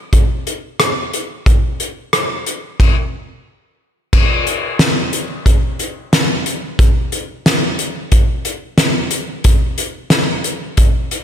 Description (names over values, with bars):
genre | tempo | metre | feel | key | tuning
rock | 90 BPM | 4/4 | straight | none | none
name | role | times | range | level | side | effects
loose indie drum kit | drums | 0.1-11.2 s | crash cymbal, hi-hat, kick drum, rim click, snare drum | -13 LUFS | equal | none
room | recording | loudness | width
light reverb | none | -14 LUFS | side -9 dB against mid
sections
0.0-4.1 A section; 4.1-11.2 B section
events
none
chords
none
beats
0.13 0.80 | 1.46 2.13 2.79 3.46 | 4.13 4.79 5.46 6.12 | 6.79 7.45 8.12 8.78 | 9.45 10.11 10.78